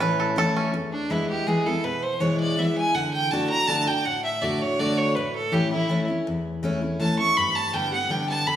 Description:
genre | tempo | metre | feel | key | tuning
bluegrass | 163 BPM | 3/4 | straight | A mixolydian | A4 = 440 Hz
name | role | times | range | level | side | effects
bluegrass banjo | melody | 0.0-0.7 s | C#4 to B4 | -25 LUFS | right 3 dB | none
picked steel-string acoustic guitar | accompaniment | 0.0-8.6 s | E2 to G4 | -25 LUFS | left 1 dB | none
clear fiddle | melody | 0.9-8.6 s | D4 to C#6 | -24 LUFS | right 1 dB | none
room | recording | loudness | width
wet recital hall reverb, RT60 1.6 s | recorded in a church or concert hall | -21 LUFS | side -10 dB against mid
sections
0.7-8.6 A section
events
none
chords
0.0 A; 0.7 E; 3.0 D; 5.2 A; 7.4 G

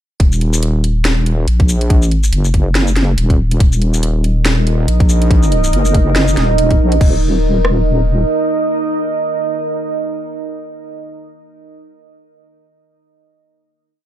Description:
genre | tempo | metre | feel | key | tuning
deep dubstep | 141 BPM | 4/4 | swing 57% on 16ths, half-time | Eb minor | A4 = 440 Hz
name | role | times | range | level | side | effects
deep soft wobble bass | bass | 0.2-8.2 s | Eb1 to Bb1 | -13 LUFS | equal | chorus, tube saturation
garage drum kit | drums | 0.2-7.8 s | kick drum, rim click | -12 LUFS | equal | overdrive, studio ambience
garage drum kit | drums | 0.2-7.1 s | crash cymbal, hi-hat, shaker, snare drum | -20 LUFS | equal | overdrive, studio ambience
deep dark ambient pad | sustained chords | 4.4-11.2 s | Eb4 to Eb5 | -18 LUFS | right 2 dB | chorus, built-in reverb
room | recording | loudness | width
digital ambience | dark, warm production | -12 LUFS | side -12 dB against mid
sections
0.2-7.0 drop; 7.0-10.4 final chord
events
drop 0.2-7.0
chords
0.2 Ebm; 7.0 Eb5

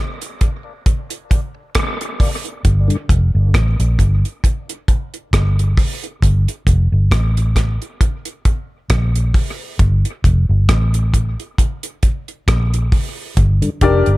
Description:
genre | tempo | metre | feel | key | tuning
dub reggae | 67 BPM | 4/4 | swing 56% on 16ths | G minor | A4 = 440 Hz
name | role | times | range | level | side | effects
mellow tonewheel organ | accompaniment | 0.2-3.0, 13.6-13.7 s | G2 to D4 | -25 LUFS | left 2 dB | overdrive, chorus vibrato, slow rotary speaker, high-pass filter, dub echo
deep reggae drum kit | drums | 0.2-14.2 s | hi-hat, kick drum, rim click | -16 LUFS | equal | none
vintage muted fingered electric bass | bass | 2.7-14.2 s | F1 to Bb1 | -14 LUFS | equal | none
clear upright piano | stabs | 13.8-14.1 s | D4 to D5 | -13 LUFS | left 4 dB | none
room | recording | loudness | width
small room reverb | none | -14 LUFS | side -19 dB against mid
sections
0.0-14.2 A section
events
break 0.0-2.6; filter sweep on tonewheel organ 0.0-2.6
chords
0.0 Gm

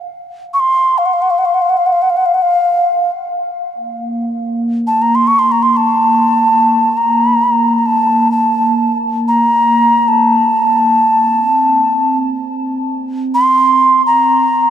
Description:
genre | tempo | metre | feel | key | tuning
world meditative, free-time meditation music | free time | none | none | unclear | A4 = 440 Hz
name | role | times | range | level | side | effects
mellow alto ocarina | melody | 0.5-14.7 s | F5 to Db6 | -11 LUFS | equal | none
glass harmonica | texture | 3.7-14.7 s | Bb3 to C4 | -17 LUFS | right 1 dB | none
room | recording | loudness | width
wet huge ambient reverb, RT60 4.5 s | dark, warm production | -10 LUFS | side -10 dB against mid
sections
0.0-3.7 A section; 3.7-14.7 A section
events
none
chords
none

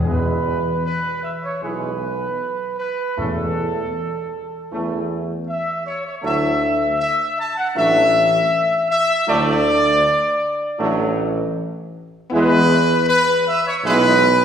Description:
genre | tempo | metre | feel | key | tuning
classical | 79 BPM | 4/4 | straight | unclear | A4 = 444 Hz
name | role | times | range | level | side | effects
mellow trumpet section | melody | 0.0-14.4 s | A4 to A5 | -18 LUFS | equal | none
mellow French horn section | sustained chords | 0.0-14.1 s | B3 to E4 | -26 LUFS | left 1 dB | none
timpani | percussion | 0.0-4.3 s | E2 | -26 LUFS | left 1 dB | none
clear trombone section | sustained chords | 0.1-14.1 s | E3 to A3 | -26 LUFS | right 2 dB | none
warm tuba | bass | 0.1-14.4 s | A1 to E2 | -23 LUFS | right 1 dB | none
room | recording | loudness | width
wet scoring stage reverb, RT60 1.6 s | heard from further back in the room | -16 LUFS | side -8 dB against mid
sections
0.1-14.4 A section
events
none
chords
0.1 E; 3.2 A/E; 6.2 Dadd9; 12.3 E

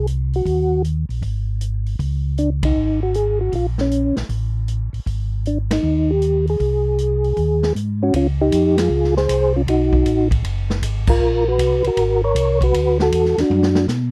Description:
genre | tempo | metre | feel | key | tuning
soul jazz organ trio | 156 BPM | 4/4 | swing 66% on 8ths | Ab major, Db major from 8.1 s | A4 = 440 Hz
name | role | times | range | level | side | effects
percussive tonewheel organ | melody | 0.0-13.9 s | Db4 to Db5 | -20 LUFS | equal | slow rotary speaker, chorus vibrato
mellow tonewheel organ | bass | 0.0-14.1 s | Gb1 to Cb3 | -23 LUFS | equal | chorus vibrato, slow rotary speaker
swinging big-band drum kit | drums | 0.1-14.0 s | crash cymbal, hi-hat, kick drum, ride cymbal, snare drum, toms | -26 LUFS | equal | none
room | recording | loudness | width
little or no reverb | dry, close 1970s-style studio recording | -19 LUFS | mono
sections
0.0-8.1 A section; 8.1-14.1 B section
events
band accent 2.6, 5.6, 8.7, 11.0; drum fill 13.5-13.9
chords
0.5 Ebm; 1.2 N.C.; 2.0 Db5; 3.5 Bbm; 4.3 N.C.; 5.1 Ab; 8.1 Dbmaj7; 9.7 Cb6; 11.2 Bbm9; 12.7 Dadd9

